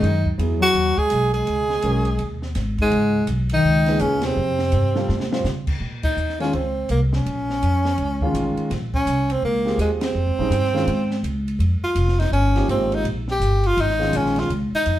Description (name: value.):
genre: modal jazz.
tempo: 166 BPM.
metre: 4/4.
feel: swing 63% on 8ths.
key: Bb dorian from 5.8 s.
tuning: A4 = 442 Hz.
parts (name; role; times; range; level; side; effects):
clear tenor saxophone; melody; 0.0-15.0 s; G#3 to G#4; -21 LUFS; right 1 dB; none.
mellow bass clarinet; second line; 0.0-5.5 s; G#2 to G#3; -25 LUFS; left 2 dB; none.
warm concert grand piano; accompaniment; 0.0-14.5 s; A#2 to C5; -26 LUFS; equal; none.
upright bass; bass; 0.0-15.0 s; F1 to C#3; -22 LUFS; equal; none.
compact cocktail drum kit; drums; 0.0-15.0 s; crash cymbal, hi-hat, kick drum, ride cymbal, snare drum; -30 LUFS; equal; none.
room: wet studio reverb, RT60 0.7 s.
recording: heard from further back in the room.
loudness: -18 LUFS.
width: side -13 dB against mid.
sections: 0.0-5.8 A section; 5.8-15.0 B section.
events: band accent 4.2, 6.0, 10.0; drum fill 5.1-5.4.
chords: 0.0 C#9sus4; 4.4 F; 5.8 Bbm11.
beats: | 0.02 0.39 0.75 1.11 | 1.47 1.83 2.19 2.55 | 2.92 3.28 3.64 4.00 | 4.36 4.72 5.08 5.45 | 5.81 6.17 6.53 6.89 | 7.25 7.62 7.98 8.34 | 8.70 9.07 9.43 9.79 | 10.15 10.51 10.88 11.24 | 11.60 11.96 12.32 12.69 | 13.05 13.41 13.77 14.13 | 14.49 14.86.